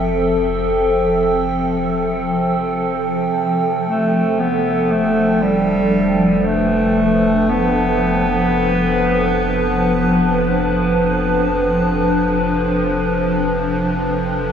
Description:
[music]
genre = ambient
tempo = free time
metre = none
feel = none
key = unclear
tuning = A4 = 440 Hz
[part]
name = evolving wavetable pad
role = sustained chords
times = 0.0-14.5 s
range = F3 to G5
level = -17 LUFS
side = equal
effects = phaser, built-in reverb
[part]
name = round analog bass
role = bass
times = 0.0-14.5 s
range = F1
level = -28 LUFS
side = equal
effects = none
[part]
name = bowed-like drone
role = drone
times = 0.0-14.5 s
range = C3 to F3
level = -26 LUFS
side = left 1 dB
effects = built-in reverb
[part]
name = mellow clarinet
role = melody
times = 3.9-11.1 s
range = G3 to B3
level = -18 LUFS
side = equal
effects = tape echo
[sound]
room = wet huge ambient reverb, RT60 8.1 s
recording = dark, warm production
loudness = -15 LUFS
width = side -8 dB against mid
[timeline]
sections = 0.0-14.5 A section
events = fade-in on synth drone 0.0-14.5; fade-out on analog synth bass 0.0-14.5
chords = 0.0 Fmaj7; 3.4 G7/F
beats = free time

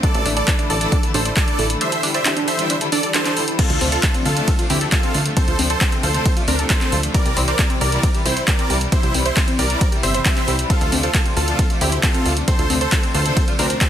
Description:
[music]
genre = uplifting trance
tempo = 135 BPM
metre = 4/4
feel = straight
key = D minor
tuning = A4 = 439 Hz
[part]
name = big supersaw lead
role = melody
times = 0.0-13.9 s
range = D4 to E5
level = -23 LUFS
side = equal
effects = sidechain pumping, digital delay
[part]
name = bright studio string section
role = sustained chords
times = 0.0-13.9 s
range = C3 to E4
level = -26 LUFS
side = left 1 dB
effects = sidechain pumping
[part]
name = tight sequenced synth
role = arpeggios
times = 0.0-13.9 s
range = C4 to D5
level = -26 LUFS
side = right 1 dB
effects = chorus, sidechain pumping, digital delay
[part]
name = electronic kick drum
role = drums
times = 0.0-13.9 s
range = none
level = -19 LUFS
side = equal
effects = overdrive
[part]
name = punchy analog drum machine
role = drums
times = 0.0-13.9 s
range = crash cymbal, handclaps, hi-hat, ride cymbal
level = -22 LUFS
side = equal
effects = overdrive, sidechain pumping on hats, sidechain pumping on cymbals
[part]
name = plucky analog bass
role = bass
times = 0.1-13.8 s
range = G1 to D2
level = -22 LUFS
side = equal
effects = sidechain pumping
[sound]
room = digital ambience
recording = dense, heavily limited modern master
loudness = -16 LUFS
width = side -10 dB against mid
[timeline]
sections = 0.0-13.9 A section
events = kick drops out 1.8-3.6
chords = 0.0 Asus4; 3.6 Dm7; 7.1 C; 10.7 Dm7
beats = | 0.03 0.48 0.92 1.37 | 1.81 2.26 2.70 3.14 | 3.59 4.03 4.48 4.92 | 5.37 5.81 6.26 6.70 | 7.14 7.59 8.03 8.48 | 8.92 9.37 9.81 10.26 | 10.70 11.14 11.59 12.03 | 12.48 12.92 13.37 13.81

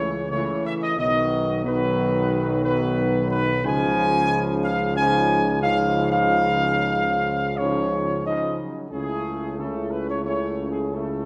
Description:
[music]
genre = classical, ceremonial fanfare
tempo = 90 BPM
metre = 4/4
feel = straight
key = Db major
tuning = A4 = 443 Hz
[part]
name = mellow trumpet section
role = melody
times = 0.0-11.3 s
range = Ab4 to Ab5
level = -26 LUFS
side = equal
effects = none
[part]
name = bright trombone section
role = sustained chords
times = 0.0-11.3 s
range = Db3 to A3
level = -32 LUFS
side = equal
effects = none
[part]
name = mellow French horn section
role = sustained chords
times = 0.0-11.3 s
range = A3 to E4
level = -31 LUFS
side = equal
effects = none
[part]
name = clear tuba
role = bass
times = 0.0-11.3 s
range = Cb2 to C#2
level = -28 LUFS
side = equal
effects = none
[sound]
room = wet recital hall reverb, RT60 1.4 s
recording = none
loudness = -23 LUFS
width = mono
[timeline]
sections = 0.0-11.3 A section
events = none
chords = 0.0 A/C#; 1.0 Cb; 3.6 Dbadd9; 8.9 A/C#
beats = 0.31 | 0.98 1.64 2.31 2.97 | 3.64 4.30 4.96 5.62 | 6.27 6.93 7.59 8.25 | 8.92 9.58 10.25 10.94

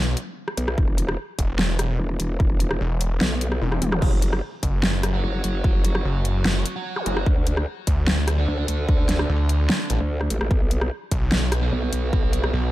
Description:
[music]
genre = heavy wobble dubstep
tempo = 148 BPM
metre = 4/4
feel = half-time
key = F# minor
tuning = A4 = 439 Hz
[part]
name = snarling distorted saw bass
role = bass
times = 0.0-12.7 s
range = E1 to D2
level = -22 LUFS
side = equal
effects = overdrive
[part]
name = dubstep drum kit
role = drums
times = 0.2-12.5 s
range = crash cymbal, hi-hat, rim click, snare drum, toms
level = -26 LUFS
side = equal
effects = overdrive
[part]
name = growl bass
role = bass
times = 0.6-12.5 s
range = E1 to D2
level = -24 LUFS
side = equal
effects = chorus, overdrive
[part]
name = electronic kick drum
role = drums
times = 0.8-12.2 s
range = none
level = -21 LUFS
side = equal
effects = overdrive
[part]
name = zap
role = sound effects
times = 3.9-4.0, 7.0-7.1 s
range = none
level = -34 LUFS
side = equal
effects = none
[part]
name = fuzz guitar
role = stabs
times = 5.1-12.7 s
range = B3 to F#5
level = -31 LUFS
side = right 4 dB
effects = distortion, ping-pong delay
[sound]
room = little or no reverb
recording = dark, warm production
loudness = -20 LUFS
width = side -16 dB against mid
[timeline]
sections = 0.0-12.7 A section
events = drum fill 3.6-4.0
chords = 0.0 N.C.; 0.8 E5; 4.0 F#5; 7.3 D5; 10.5 B5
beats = 0.37 | 0.78 1.18 1.59 1.99 | 2.40 2.80 3.21 3.62 | 4.02 4.43 4.83 5.24 | 5.64 6.05 6.45 6.86 | 7.26 7.67 8.07 8.48 | 8.88 9.29 9.70 10.10 | 10.51 10.91 11.32 11.72 | 12.13 12.53

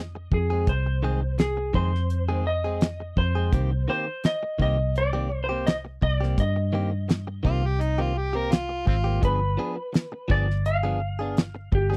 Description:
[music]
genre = straight-eighth soul blues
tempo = 84 BPM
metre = 4/4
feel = swing 53% on 16ths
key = C minor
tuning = A4 = 440 Hz
[part]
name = clean lap steel guitar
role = melody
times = 0.0-12.0 s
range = G4 to F5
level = -31 LUFS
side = equal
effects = slapback echo
[part]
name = vintage muted fingered electric bass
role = bass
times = 0.0-12.0 s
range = G1 to G2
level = -28 LUFS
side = equal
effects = none
[part]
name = direct-recorded clean electric guitar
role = stabs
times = 0.2-12.0 s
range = Eb3 to Ab4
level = -33 LUFS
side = equal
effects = none
[part]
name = damped 70s drum kit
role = drums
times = 0.3-12.0 s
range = hi-hat, kick drum, snare drum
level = -25 LUFS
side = equal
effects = none
[part]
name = overdriven harmonica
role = second line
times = 7.5-9.2 s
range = C4 to Bb4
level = -31 LUFS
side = equal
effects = none
[sound]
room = little or no reverb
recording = dry, close 1970s-style studio recording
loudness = -25 LUFS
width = mono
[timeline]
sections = 0.0-12.0 A section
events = none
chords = 0.0 Fm7; 3.5 Cm7; 9.2 G7b9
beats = | 0.67 1.39 2.10 2.81 | 3.53 4.24 4.95 5.67 | 6.38 7.09 7.80 8.52 | 9.23 9.94 10.65 11.37

